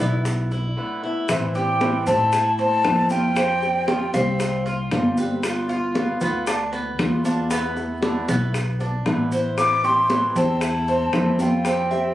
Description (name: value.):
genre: latin, Cuban son and guajira.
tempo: 116 BPM.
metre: 4/4.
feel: straight.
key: A minor.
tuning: A4 = 440 Hz.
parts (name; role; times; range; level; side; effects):
nylon-string guitar; second line; 0.0-1.0, 11.9-12.1 s; E4 to E5; -30 LUFS; equal; none.
fingerpicked swing-style acoustic guitar; accompaniment; 0.0-12.1 s; D3 to G4; -28 LUFS; equal; none.
Cuban tres; arpeggios; 0.0-12.1 s; B3 to C5; -26 LUFS; right 1 dB; none.
upright bass; bass; 0.0-12.1 s; G1 to A2; -25 LUFS; equal; none.
congas; percussion; 0.0-12.1 s; none; -27 LUFS; equal; none.
bongos; percussion; 0.3-12.1 s; none; -28 LUFS; left 3 dB; none.
maracas; percussion; 0.3-12.1 s; none; -39 LUFS; right 1 dB; none.
breathy mellow silver concert flute; melody; 1.3-5.1, 9.6-12.1 s; E5 to D6; -22 LUFS; left 1 dB; plate reverb.
room: moderate studio reverb, RT60 0.8 s.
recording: recorded on a phone in the room, club reverb, compression.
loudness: -19 LUFS.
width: side -14 dB against mid.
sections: 0.0-1.3 A section; 1.3-12.1 B section.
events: none.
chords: 0.0 E7sus4; 1.3 Am7; 3.4 Fsus2; 5.4 G7; 7.5 E7sus4; 9.6 Am7.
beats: 0.26 0.77 | 1.29 1.81 2.33 2.85 | 3.36 3.88 4.40 4.92 | 5.43 5.95 6.47 6.99 | 7.51 8.03 8.54 9.06 | 9.58 10.10 10.62 11.13 | 11.65.